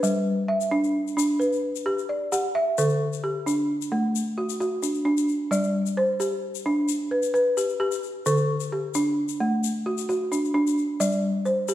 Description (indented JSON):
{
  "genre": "west african traditional, West African string and xylophone music",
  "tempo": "88 BPM (dotted quarters)",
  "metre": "12/8",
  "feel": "straight",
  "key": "D mixolydian",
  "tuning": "A4 = 440 Hz",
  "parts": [
    { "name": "balafon", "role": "arpeggios", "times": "0.0-11.7 s", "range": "D3 to F#5", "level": "-22 LUFS", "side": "equal", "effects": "none" },
    { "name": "egg shaker", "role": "percussion", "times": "0.0-11.7 s", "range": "none", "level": "-34 LUFS", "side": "left 12 dB", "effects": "none" }
  ],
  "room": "wet recital hall reverb, RT60 1.6 s",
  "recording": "none",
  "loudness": "-22 LUFS",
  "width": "side -13 dB against mid",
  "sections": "0.0-2.8 A section; 2.8-11.7 B section",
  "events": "none",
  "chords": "0.0 G; 2.8 D; 5.5 G; 8.3 D; 11.0 G5"
}